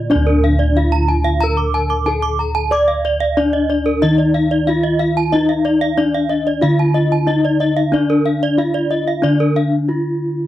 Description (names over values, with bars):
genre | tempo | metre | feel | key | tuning
gamelan | 92 BPM | 4/4 | straight | D pelog | A4 = 440 Hz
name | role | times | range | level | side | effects
gamelan-type bronze metallophone | melody | 0.0-10.5 s | D4 to D5 | -17 LUFS | left 2 dB | none
gamelan-type bronze metallophone | arpeggios | 0.0-9.6 s | Bb4-40c to D6 | -22 LUFS | right 6 dB | none
gamelan-type bossed gongs | bass | 0.0-10.5 s | D2 to D5 | -18 LUFS | equal | none
gamelan-type bronze metallophone | arpeggios | 0.1-9.7 s | D5 to D6 | -22 LUFS | left 4 dB | none
room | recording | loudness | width
little or no reverb | dry, close 1970s-style studio recording | -14 LUFS | side -13 dB against mid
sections
0.1-10.5 A section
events
break 9.6-10.5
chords
none